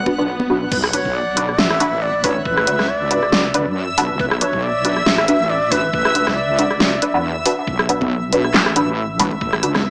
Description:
deep dubstep; 138 BPM; 4/4; swing 55% on 16ths, half-time; B minor; A4 = 440 Hz
wobble bass; bass; 0.0-9.9 s; A1 to F#2; -27 LUFS; equal; chorus
swell and sub drop; sound effects; 0.0-2.5 s; -34 LUFS; equal
backwards swelling texture; texture; 0.0-9.9 s; E5 to F#5; -27 LUFS; equal; built-in reverb
filtered dub chord stab; stabs; 0.1-9.7 s; D4 to B4; -24 LUFS; equal; phaser, ensemble chorus, dub echo
congas; percussion; 0.1-0.5, 8.0-9.8 s; -28 LUFS; equal; dub echo
breathy bright low ney; melody; 0.7-7.2 s; B4 to E5; -24 LUFS; equal; dub echo
dubstep drum kit; drums; 0.7-9.8 s; crash cymbal, handclaps, hi-hat, rim click, snare drum; -21 LUFS; equal; low-pass filter on cymbals, low-pass filter on snare, low-pass filter on hats, low-pass filter on room
electronic kick drum; drums; 0.7-9.5 s; -30 LUFS; equal
moderate digital room reverb, RT60 1.2 s, digital ambience; small speaker sound; -18 LUFS; mono
0.7-9.9 A section
swell 0.0-0.7; drop 0.7-9.9; impact 0.7-2.5
0.0 Bm
0.28 | 0.72 1.15 1.59 2.02 | 2.46 2.89 3.33 3.76 | 4.20 4.63 5.07 5.50 | 5.93 6.37 6.80 7.24 | 7.67 8.11 8.54 8.98 | 9.41 9.85

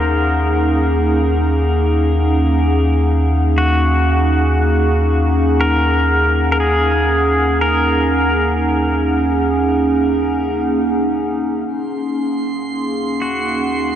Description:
ambient; 59 BPM; 4/4; straight; Eb dorian; A4 = 440 Hz
pedal steel guitar; melody; 0.0-14.0 s; Gb4 to Bb4; -20 LUFS; left 1 dB; diffuse ambient delay
warbly tape-like pad; sustained chords; 0.0-14.0 s; Bb3 to Gb5; -17 LUFS; right 1 dB; chorus, built-in reverb
round analog bass; bass; 0.0-14.0 s; Eb2; -18 LUFS; equal
bowed-like drone; drone; 12.5-14.0 s; Eb3 to Bb3; -39 LUFS; right 1 dB
drifting glass-harmonics texture; texture; 11.9-14.0 s; C6; -26 LUFS; right 3 dB; chorus, built-in reverb
wet huge ambient reverb, RT60 7.7 s; cassette tape; -14 LUFS; side -10 dB against mid
0.0-11.7 A section; 11.7-14.0 B section
0.0 Ebm7
0.50 1.51 2.53 | 3.55 4.57 5.58 6.60 | 7.62 8.63 9.65 10.67 | 11.68 12.70 13.72

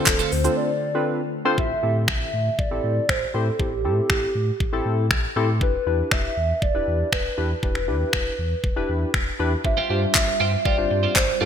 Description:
dance-pop; 119 BPM; 4/4; straight; A minor; A4 = 440 Hz
hollow clarinet-like synth lead; melody; 0.0-11.5 s; G4 to E5; -26 LUFS; equal; chorus
warm analog keys; accompaniment; 0.0-11.5 s; C4 to C5; -26 LUFS; left 1 dB; chorus, sidechain pumping
glassy FM pad; sustained chords; 0.0-1.5, 9.6-11.5 s; D3 to F4; -32 LUFS; left 2 dB; ensemble chorus, built-in reverb, sidechain pumping
twelve-string electric guitar; riff; 0.0-0.5, 9.6-11.5 s; F4 to C5; -27 LUFS; right 7 dB; wide subtle chorus
sub bass with octave; bass; 0.1-11.5 s; D1 to A2; -26 LUFS; equal; sidechain pumping
pop drum kit; drums; 0.1-11.3 s; finger snaps, handclaps, hi-hat, kick drum, shaker; -23 LUFS; equal; gated reverb
moderate lush hall reverb, RT60 1.9 s, digital ambience; bright 1980s-style digital production; -20 LUFS; side -8 dB against mid
0.0-1.6 A section; 1.6-11.5 B section
break 0.6-1.6
0.0 Dm7; 1.6 Am7; 5.6 Em7; 9.6 G7sus4
0.07 0.57 1.07 | 1.58 2.08 2.59 3.09 | 3.60 4.10 4.61 5.11 | 5.61 6.12 6.62 7.13 | 7.63 8.13 8.64 9.14 | 9.65 10.15 10.65 11.16

